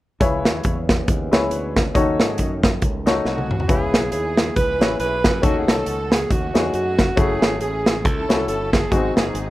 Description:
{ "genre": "uptempo gospel", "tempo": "138 BPM", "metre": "4/4", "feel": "swing 57% on 8ths", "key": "C# minor", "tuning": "A4 = 440 Hz", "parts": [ { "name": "clear grand piano", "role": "accompaniment", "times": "0.2-9.5 s", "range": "G#2 to C#5", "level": "-23 LUFS", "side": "left 3 dB", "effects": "none" }, { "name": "mellow French horn section", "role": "sustained chords", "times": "0.2-3.7 s", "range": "D#3 to C#4", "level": "-32 LUFS", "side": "right 2 dB", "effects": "none" }, { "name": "modern bright fingered electric bass", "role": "bass", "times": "0.2-9.5 s", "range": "F#1 to G#2", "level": "-28 LUFS", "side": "equal", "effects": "none" }, { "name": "modern studio drum kit", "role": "drums", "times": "0.2-9.5 s", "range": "hi-hat, kick drum, snare drum, toms", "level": "-19 LUFS", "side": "equal", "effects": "none" }, { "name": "bright alto saxophone", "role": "melody", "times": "3.3-9.5 s", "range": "F#4 to B4", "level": "-24 LUFS", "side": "right 2 dB", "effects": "none" }, { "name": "warm studio string section", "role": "melody", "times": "3.3-9.5 s", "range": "A3 to B4", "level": "-30 LUFS", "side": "equal", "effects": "none" } ], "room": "little or no reverb", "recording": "rough home demo mix", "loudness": "-17 LUFS", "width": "side -16 dB against mid", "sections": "0.2-3.7 A section; 3.7-9.5 B section", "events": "drum fill 3.3-3.7", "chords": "0.2 C#m7; 2.0 D#m7b5; 3.7 C#m7; 5.4 D#m7b5; 7.2 F#m7; 8.9 G#7", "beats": "| 0.21 0.64 1.08 1.52 | 1.95 2.39 2.82 3.26 | 3.69 4.13 4.56 5.00 | 5.43 5.87 6.30 6.74 | 7.17 7.61 8.04 8.48 | 8.92 9.35" }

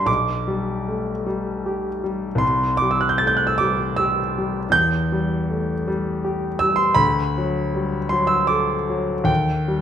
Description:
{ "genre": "classical, romantic nocturne for solo piano", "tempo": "52 BPM (dotted quarters)", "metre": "6/8", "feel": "rubato", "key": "G major", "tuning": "A4 = 435 Hz", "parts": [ { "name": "clear concert grand piano", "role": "solo", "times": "0.0-9.8 s", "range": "B1 to A6", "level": "-19 LUFS", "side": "equal", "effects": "none" } ], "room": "wet recital hall reverb, RT60 1.4 s", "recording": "none", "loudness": "-19 LUFS", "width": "side -9 dB against mid", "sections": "0.0-9.8 A section", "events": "none", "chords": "0.1 G/B; 2.4 C; 4.7 Emadd11; 7.0 D; 9.3 Eb", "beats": "| 0.08 1.26 | 2.42 3.58 | 4.72 5.85 | 6.98 8.13 | 9.29" }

